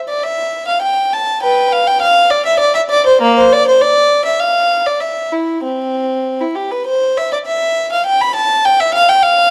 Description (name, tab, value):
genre	classical, baroque-style suite movement for unaccompanied violin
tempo	100 BPM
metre	3/4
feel	rubato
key	C major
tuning	A4 = 439 Hz
part	warm violin	solo	0.1-9.5 s	Bb3 to B5	-14 LUFS	equal	none
room	moderate stone room reverb, RT60 1.4 s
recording	dark, warm production, vinyl crackle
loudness	-14 LUFS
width	mono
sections	0.0-9.5 A section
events	none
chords	none